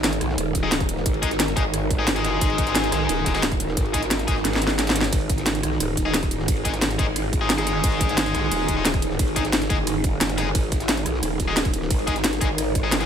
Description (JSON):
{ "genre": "dark technical drum and bass", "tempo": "177 BPM", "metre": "4/4", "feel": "straight", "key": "unclear", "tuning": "A4 = 440 Hz", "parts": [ { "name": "swarming drone", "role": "sustained chords", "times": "0.0-13.1 s", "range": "G#2 to A#4", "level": "-27 LUFS", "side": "right 1 dB", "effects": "built-in reverb, sidechain pumping" }, { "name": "growl bass", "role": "bass", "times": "0.0-13.1 s", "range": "D#1 to B1", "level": "-27 LUFS", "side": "equal", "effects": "chorus, overdrive, sidechain pumping" }, { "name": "breakbeat sampler-style drum kit", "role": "drums", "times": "0.0-13.0 s", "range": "ride cymbal, snare drum", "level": "-35 LUFS", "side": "right 1 dB", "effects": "none" }, { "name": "drum and bass drum kit", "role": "drums", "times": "0.0-13.1 s", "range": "hi-hat, ride cymbal, rim click, snare drum", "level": "-24 LUFS", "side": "equal", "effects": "overdrive" }, { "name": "electronic kick drum", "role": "drums", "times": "0.5-12.8 s", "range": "none", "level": "-24 LUFS", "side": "equal", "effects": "none" }, { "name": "distorted electric guitar", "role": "stabs", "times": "0.6-13.1 s", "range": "G#3 to G#4", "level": "-27 LUFS", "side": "left 4 dB", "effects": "overdrive, ping-pong delay" } ], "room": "light reverb", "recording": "none", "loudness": "-20 LUFS", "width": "side -8 dB against mid", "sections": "0.0-13.1 A section", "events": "kick drops out 4.4-5.1; drum fill 4.4-5.1", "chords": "0.0 G#5", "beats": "0.04 0.38 0.72 | 1.06 1.40 1.74 2.07 | 2.41 2.75 3.09 3.43 | 3.77 4.11 4.45 4.79 | 5.12 5.46 5.80 6.14 | 6.48 6.82 7.16 7.50 | 7.84 8.18 8.52 8.85 | 9.19 9.53 9.87 10.21 | 10.55 10.89 11.23 11.57 | 11.90 12.24 12.58 12.92" }